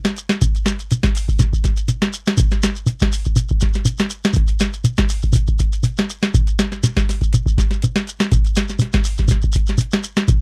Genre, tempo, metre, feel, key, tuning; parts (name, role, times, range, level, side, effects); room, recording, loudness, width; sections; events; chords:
afrobeat; 122 BPM; 4/4; straight
booming analog drum machine; drums; 0.0-10.4 s; hi-hat, kick drum, snare drum; -19 LUFS; equal
shekere; percussion; 0.1-10.4 s; -22 LUFS; equal
little or no reverb; dry, close 1970s-style studio recording; -18 LUFS; mono
0.0-10.4 A section